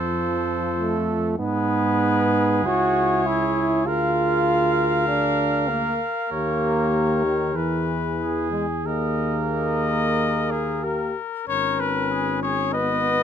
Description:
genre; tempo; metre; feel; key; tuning
classical, brass quintet; 90-101 BPM; 4/4; rubato; G# minor; A4 = 436 Hz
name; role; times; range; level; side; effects
bright trumpet; melody; 0.0-13.2 s; G#4 to E#5; -26 LUFS; left 7 dB; none
clear trumpet; second line; 0.0-13.2 s; G#4 to B4; -28 LUFS; right 6 dB; none
mellow French horn; accompaniment; 0.0-13.2 s; B3 to G#4; -28 LUFS; left 5 dB; none
mellow tuba; bass; 0.0-13.2 s; G#1 to G#2; -28 LUFS; right 3 dB; none
clear trombone; accompaniment; 0.2-13.2 s; D#3 to F#4; -24 LUFS; right 2 dB; none
room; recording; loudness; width
light reverb; close, detailed microphones; -20 LUFS; side -8 dB against mid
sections
0.0-11.5 A section; 11.5-13.2 B section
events
none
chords
0.0 F; 1.4 G#m; 2.6 C#m; 3.9 A#7/D; 6.3 D#7; 7.6 E; 8.9 D#sus4; 10.2 D#; 11.5 G#m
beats
0.17 0.78 | 1.39 2.00 2.65 3.26 | 3.86 4.47 5.08 5.70 | 6.32 6.93 7.55 8.19 | 8.85 9.52 10.17 10.83 | 11.48 12.12 12.75

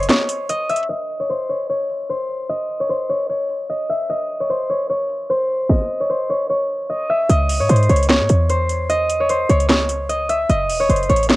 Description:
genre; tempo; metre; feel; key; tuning
hip hop, trap; 150 BPM; 4/4; half-time; C# harmonic minor; A4 = 441 Hz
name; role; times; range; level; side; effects
concert harp; melody; 0.0-11.4 s; B#4 to E5; -19 LUFS; left 1 dB; low-pass filter, cassette tape
short 808-style bass; bass; 0.0-0.1, 7.3-11.4 s; E1 to G#2; -18 LUFS; equal; none
trap drum kit; drums; 0.0-11.4 s; handclaps, hi-hat, kick drum, snare drum; -19 LUFS; equal; overdrive, cassette tape
room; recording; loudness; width
light reverb; home recording on cassette, low-pass filter; -17 LUFS; side -19 dB against mid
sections
0.9-7.3 A section; 7.3-11.4 B section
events
kick muted 0.1-0.9; filter sweep 0.9-7.3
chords
0.0 F#5; 0.9 N.C.; 7.3 C#m; 10.5 F#m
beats
0.10 0.49 | 0.90 1.29 1.70 2.10 | 2.50 2.90 3.29 3.69 | 4.09 4.50 4.89 5.29 | 5.70 6.09 6.50 6.89 | 7.29 7.70 8.10 8.49 | 8.89 9.29 9.70 10.10 | 10.49 10.89 11.29

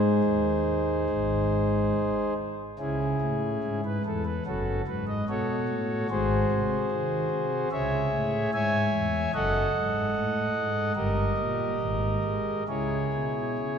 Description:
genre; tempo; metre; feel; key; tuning
classical, chorale-style piece for pipe organ; 73 BPM; 4/4; uneven beats, rubato; C# minor; A4 = 440 Hz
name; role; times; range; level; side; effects
pipe organ, principal; solo; 0.0-13.8 s; F#1 to G#5; -25 LUFS; equal; none
room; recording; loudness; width
wet church reverb, RT60 2.8 s; heard from further back in the room; -25 LUFS; side -7 dB against mid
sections
0.0-13.8 A section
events
none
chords
0.0 G#; 2.8 C#m; 4.5 F#m; 6.1 G#7; 7.7 C#m; 9.3 D#dim/F#; 11.0 D#/G; 11.8 G#5; 12.7 C#m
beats
0.23 1.09 1.94 | 2.79 3.63 4.46 5.28 | 6.09 6.90 7.72 8.53 | 9.33 10.15 10.96 11.80 | 12.68 13.58

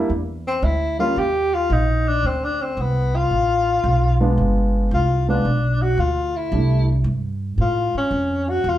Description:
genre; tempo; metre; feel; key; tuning
jazz, small-group swing and bop; 112 BPM; 4/4; swing 68% on 8ths; C major; A4 = 440 Hz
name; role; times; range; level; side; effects
warm grand piano; accompaniment; 0.0-6.9 s; G3 to F4; -23 LUFS; right 1 dB; none
upright bass; bass; 0.0-8.8 s; G1 to A2; -21 LUFS; equal; none
mellow tenor saxophone; melody; 0.5-8.8 s; B3 to G4; -21 LUFS; left 2 dB; none
room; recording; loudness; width
wet club reverb, RT60 0.7 s; heard from further back in the room; -18 LUFS; side -13 dB against mid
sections
0.0-8.8 A section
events
none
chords
0.1 Em7b5; 1.2 Eb5; 2.2 Dm7; 4.4 G7b9; 6.5 C6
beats
| 0.11 0.64 1.18 1.71 | 2.25 2.78 3.32 3.85 | 4.39 4.92 5.46 5.99 | 6.53 7.06 7.59 8.13 | 8.66

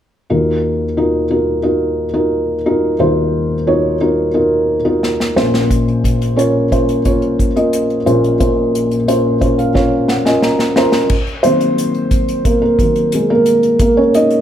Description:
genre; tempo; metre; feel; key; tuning
piano-driven pop; 89 BPM; 4/4; straight; unclear; A4 = 440 Hz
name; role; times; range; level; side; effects
felt-muted upright piano; accompaniment; 0.3-14.4 s; Bb1 to Bb5; -12 LUFS; equal; none
unplugged drum kit; drums; 5.0-14.4 s; crash cymbal, hi-hat, kick drum, snare drum; -18 LUFS; equal; none
room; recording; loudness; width
moderate large studio reverb, RT60 0.8 s; none; -12 LUFS; side -10 dB against mid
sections
0.3-11.1 A section; 11.1-14.4 B section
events
drum fill 5.0-5.7, 9.8-11.1; felt piano fill 9.1-11.1; felt piano solo 11.1-14.4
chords
0.3 Ebmadd9; 5.4 Bbmadd9; 11.1 Ebm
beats
| 0.31 0.98 1.66 2.33 | 3.01 3.68 4.36 5.03 | 5.71 6.38 7.06 7.73 | 8.41 9.08 9.76 10.43 | 11.11 11.78 12.45 13.13 | 13.80

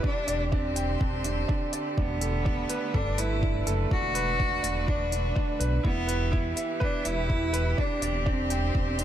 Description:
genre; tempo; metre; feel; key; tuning
piano and strings electronica; 124 BPM; 4/4; straight; E minor; A4 = 440 Hz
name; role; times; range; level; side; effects
clear cello; melody; 0.0-9.0 s; B3 to F#4; -32 LUFS; equal; none
clear string quartet; sustained chords; 0.0-9.0 s; D3 to C5; -36 LUFS; right 1 dB; sidechain pumping
clear concert grand piano; riff; 0.0-9.0 s; D4 to G5; -32 LUFS; right 3 dB; ping-pong delay
electronic kick drum; drums; 0.0-8.8 s; none; -29 LUFS; equal; none
dark detuned saw bass; bass; 0.3-9.0 s; E1 to B1; -30 LUFS; equal; sidechain pumping
electronic hi-hat; drums; 0.3-9.0 s; none; -33 LUFS; left 1 dB; none
room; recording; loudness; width
light reverb; none; -25 LUFS; side -11 dB against mid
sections
0.0-9.0 A section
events
none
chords
0.0 Csus2/E; 2.0 Gadd9/E; 3.9 Bm7/E; 5.8 Em; 7.8 Csus2/E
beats
| 0.04 0.52 1.01 1.49 | 1.97 2.46 2.94 3.43 | 3.91 4.39 4.88 5.36 | 5.84 6.33 6.81 7.30 | 7.78 8.26 8.75

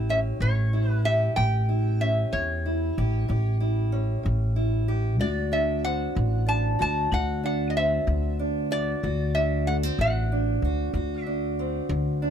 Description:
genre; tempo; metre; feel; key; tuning
acoustic country blues, solo or duo; 63 BPM (dotted quarters); 12/8; straight; unclear; A4 = 436 Hz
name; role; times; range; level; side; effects
fingerpicked steel-string acoustic guitar; accompaniment; 0.0-12.3 s; A2 to G4; -30 LUFS; right 2 dB; none
upright bass; bass; 0.0-12.3 s; A1 to E2; -25 LUFS; equal; none
metal-body resonator slide guitar; melody; 0.1-11.9 s; C#5 to A5; -27 LUFS; equal; none
room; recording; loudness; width
light reverb; close, detailed microphones; -23 LUFS; side -8 dB against mid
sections
0.0-12.3 A section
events
none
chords
0.0 A7; 5.2 D7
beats
0.40 | 1.36 2.33 3.29 4.25 | 5.21 6.17 7.12 8.08 | 9.04 10.00 10.95 11.91

